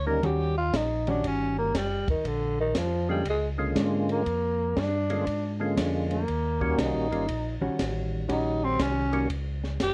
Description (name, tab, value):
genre	soul jazz organ trio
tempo	119 BPM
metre	4/4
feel	swing 66% on 8ths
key	unclear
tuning	A4 = 440 Hz
part	growling tenor saxophone	melody	0.0-9.9 s	D3 to Bb4	-30 LUFS	equal	none
part	mellow tonewheel organ	bass	0.0-9.9 s	F#1 to Ab2	-33 LUFS	equal	overdrive, chorus vibrato, slow rotary speaker
part	percussive tonewheel organ	melody	0.1-9.3 s	D3 to F#4	-31 LUFS	equal	slow rotary speaker, chorus vibrato
part	hollow-body jazz guitar	accompaniment	0.2-9.1 s	Eb3 to F#4	-33 LUFS	equal	none
part	compact cocktail drum kit	drums	0.2-9.9 s	hi-hat, kick drum, ride cymbal, snare drum	-37 LUFS	equal	none
room	light reverb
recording	worn, warbling old tape, cassette tape, warbly pitch drift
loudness	-27 LUFS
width	mono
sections	0.0-9.9 A section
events	tenor saxophone solo 0.0-9.9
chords	0.2 Eb7#9; 2.2 Bb7#9; 6.3 Eb7#9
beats	| 0.23 0.74 1.24 1.74 | 2.25 2.75 3.25 3.76 | 4.26 4.76 5.27 5.77 | 6.28 6.78 7.28 7.79 | 8.29 8.79 9.30 9.80